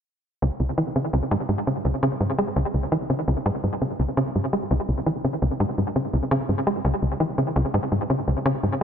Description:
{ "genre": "ambient", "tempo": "84 BPM", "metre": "4/4", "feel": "straight", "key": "C# minor", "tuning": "A4 = 440 Hz", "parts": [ { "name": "tight sequencer bass", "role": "riff", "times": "0.4-8.8 s", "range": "C#2 to G#3", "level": "-21 LUFS", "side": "equal", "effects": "wide subtle chorus, tape echo" } ], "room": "moderate plate reverb, RT60 3.5 s", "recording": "none", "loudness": "-22 LUFS", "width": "side -8 dB against mid", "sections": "0.4-8.8 A section", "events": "none", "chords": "none" }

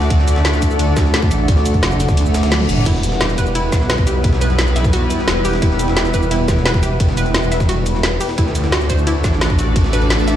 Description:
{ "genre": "dark technical drum and bass", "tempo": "174 BPM", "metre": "4/4", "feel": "straight", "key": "E minor", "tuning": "A4 = 436 Hz", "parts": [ { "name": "sweeping resonant pad", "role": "sustained chords", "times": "0.0-10.4 s", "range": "G3 to D5", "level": "-23 LUFS", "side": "equal", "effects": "chorus, sidechain pumping" }, { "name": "wide detuned saw bass", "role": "bass", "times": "0.0-10.4 s", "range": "E1 to D2", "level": "-18 LUFS", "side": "equal", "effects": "chorus, overdrive, sidechain pumping" }, { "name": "breakbeat sampler-style drum kit", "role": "drums", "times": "0.0-10.4 s", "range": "hi-hat, snare drum", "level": "-30 LUFS", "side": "equal", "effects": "none" }, { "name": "granular cloud pad", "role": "texture", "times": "0.0-10.4 s", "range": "D4 to G5", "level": "-24 LUFS", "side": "left 1 dB", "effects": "built-in reverb, sidechain pumping" }, { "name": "drum and bass drum kit", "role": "drums", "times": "0.1-10.3 s", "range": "crash cymbal, hi-hat, ride cymbal, shaker, snare drum, toms", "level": "-22 LUFS", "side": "equal", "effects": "none" }, { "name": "electronic kick drum", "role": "drums", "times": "0.1-9.8 s", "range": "none", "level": "-16 LUFS", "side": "equal", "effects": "none" }, { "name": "growling FM bass", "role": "bass", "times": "1.0-2.8, 6.5-7.0 s", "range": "E1 to D2", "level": "-17 LUFS", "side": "equal", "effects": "tube saturation" }, { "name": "reverse cymbal", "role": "sound effects", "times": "2.3-2.9 s", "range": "none", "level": "-28 LUFS", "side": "left 6 dB", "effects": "none" }, { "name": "analog pluck", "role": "arpeggios", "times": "2.9-10.3 s", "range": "E4 to E5", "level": "-25 LUFS", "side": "right 2 dB", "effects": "chorus, sidechain pumping, digital delay" } ], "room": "light reverb, digital ambience", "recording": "played on a big sound system in a bare room, large studio reverb", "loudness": "-13 LUFS", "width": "side -11 dB against mid", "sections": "0.0-10.4 A section", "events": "reverse cymbal 2.3-2.9; drum fill 2.5-2.9", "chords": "0.0 D; 2.9 Em; 8.4 D" }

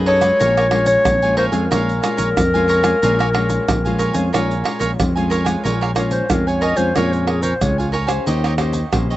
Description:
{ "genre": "samba and choro", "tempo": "92 BPM", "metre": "4/4", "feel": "straight", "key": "Bb minor", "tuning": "A4 = 440 Hz", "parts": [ { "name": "cavaquinho", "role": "accompaniment", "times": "0.0-9.2 s", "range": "D#4 to Ab5", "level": "-24 LUFS", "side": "right 4 dB", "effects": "none" }, { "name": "nylon-string guitar", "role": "accompaniment", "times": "0.0-9.2 s", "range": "F2 to C5", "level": "-24 LUFS", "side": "left 3 dB", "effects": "none" }, { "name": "modern bright fingered electric bass", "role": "bass", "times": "0.0-9.2 s", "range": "Bb1 to F#2", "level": "-20 LUFS", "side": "equal", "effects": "none" }, { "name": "mellow clarinet", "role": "melody", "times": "0.1-7.9 s", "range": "F4 to Eb5", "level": "-18 LUFS", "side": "left 1 dB", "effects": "none" }, { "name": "pandeiro, tube shaker, surdo and tamborim", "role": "percussion", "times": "0.1-9.2 s", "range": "none", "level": "-23 LUFS", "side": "right 2 dB", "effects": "none" } ], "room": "little or no reverb", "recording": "recorded outdoors, with no room sound, nothing above 8.0 kHz", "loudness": "-15 LUFS", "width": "side -15 dB against mid", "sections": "0.0-5.6 A section; 5.6-9.2 B section", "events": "clarinet solo 5.6-9.2", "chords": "0.4 Bbm7; 8.3 Eb13" }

